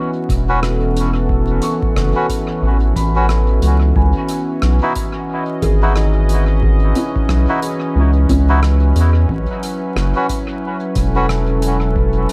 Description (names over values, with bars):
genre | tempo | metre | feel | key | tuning
ambient dub | 90 BPM | 4/4 | swing 60% on 16ths | unclear | A4 = 440 Hz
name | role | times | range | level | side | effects
warm analog pad | sustained chords | 0.0-12.3 s | E3 to D#5 | -23 LUFS | equal | chorus
felt-muted upright piano | arpeggios | 0.0-12.3 s | C#4 to C#6 | -29 LUFS | equal | analog delay
round analog bass | bass | 0.3-12.3 s | E1 to E2 | -16 LUFS | equal | none
electronic kick drum | drums | 0.3-12.1 s | none | -23 LUFS | equal | none
soft-mallet drum kit | drums | 0.3-12.3 s | hi-hat, rim click | -32 LUFS | equal | dub echo
melodica | stabs | 0.5-11.3 s | C#4 to B4 | -26 LUFS | equal | dub echo
room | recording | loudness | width
light reverb | echo-heavy mix, vinyl crackle | -16 LUFS | mono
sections
0.0-12.3 A section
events
none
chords
0.0 A69; 4.0 C#m11; 9.3 A69